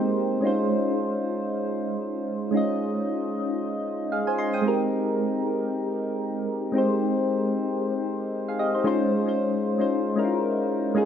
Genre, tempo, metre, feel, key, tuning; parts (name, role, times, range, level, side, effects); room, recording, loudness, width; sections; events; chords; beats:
amapiano; 114 BPM; 4/4; swing 58% on 16ths; A4 = 442 Hz
soft electric-piano-like synth keys; solo; 0.0-11.1 s; Ab3 to Eb6; -23 LUFS; equal; chorus, phaser
light reverb; -23 LUFS; side -8 dB against mid
0.0-8.9 A section; 8.9-11.1 B section
drop 8.9-11.1
0.4 Dbmaj9; 4.6 Abmaj7; 8.9 Dbmaj9
| 0.43 0.96 1.49 2.01 | 2.54 3.06 3.59 4.12 | 4.64 5.17 5.70 6.22 | 6.75 7.28 7.80 8.33 | 8.85 9.38 9.91 10.43 | 10.96